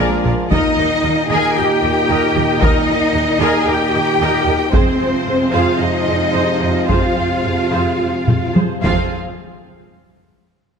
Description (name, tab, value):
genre	cinematic, epic orchestral film score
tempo	111 BPM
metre	4/4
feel	uneven beats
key	F minor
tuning	A4 = 441 Hz
part	dark symphonic violin section	melody	0.0-9.1 s	Ab4 to Ab5	-22 LUFS	left 3 dB	none
part	rich symphonic violin section	second line	0.0-9.2 s	Ab4 to Ab5	-24 LUFS	left 2 dB	none
part	clear symphonic viola section	accompaniment	0.0-9.2 s	C4 to Eb5	-23 LUFS	right 1 dB	none
part	bright trombone section	sustained chords	0.0-9.1 s	Bb2 to F3	-24 LUFS	right 3 dB	none
part	mellow French horn section	sustained chords	0.0-9.1 s	Ab3 to Eb4	-24 LUFS	left 4 dB	none
part	rich symphonic string section	sustained chords	0.0-9.1 s	Bb3 to Eb5	-26 LUFS	left 2 dB	none
part	rich symphonic cello section	bass	0.0-9.1 s	Ab3 to Ab4	-20 LUFS	right 2 dB	none
part	rich symphonic double bass section	bass	0.0-9.2 s	Bb1 to F2	-23 LUFS	right 3 dB	none
part	taiko ensemble	drums	0.3-9.9 s	none	-18 LUFS	equal	none
room	moderate scoring stage reverb, RT60 1.9 s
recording	none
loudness	-13 LUFS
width	side -6 dB against mid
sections	0.0-9.1 A section; 9.1-10.8 B section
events	drum fill 8.3-9.1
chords	0.0 Bb7; 0.5 Eb; 4.7 Fm; 9.1 N.C.